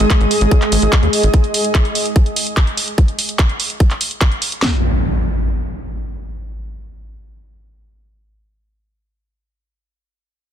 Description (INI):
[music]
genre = psychedelic trance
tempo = 146 BPM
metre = 4/4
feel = straight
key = unclear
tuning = A4 = 445 Hz
[part]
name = tight sequencer bass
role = bass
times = 0.0-1.3 s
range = G#1 to D#2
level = -15 LUFS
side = equal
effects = none
[part]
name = drum and bass drum kit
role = drums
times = 0.0-4.6 s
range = handclaps, hi-hat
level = -20 LUFS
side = right 1 dB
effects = studio reverb
[part]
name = granular cloud pad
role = texture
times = 0.0-1.3 s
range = G#3 to D#6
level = -18 LUFS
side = equal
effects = built-in reverb, sidechain pumping
[part]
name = drum and bass drum kit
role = drums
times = 0.1-4.7 s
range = kick drum, snare drum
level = -13 LUFS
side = equal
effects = studio reverb
[part]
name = impact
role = sound effects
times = 4.6-8.0 s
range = none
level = -20 LUFS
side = equal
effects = none
[sound]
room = light reverb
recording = dense, heavily limited modern master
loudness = -13 LUFS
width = side -10 dB against mid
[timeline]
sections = 0.0-4.6 A section; 4.6-7.9 B section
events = none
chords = 0.0 G#5; 4.6 N.C.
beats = 0.10 0.51 0.93 | 1.34 1.75 2.16 2.57 | 2.98 3.39 3.80 4.21 | 4.62 5.04 5.45 5.86 | 6.27 6.68 7.09 7.50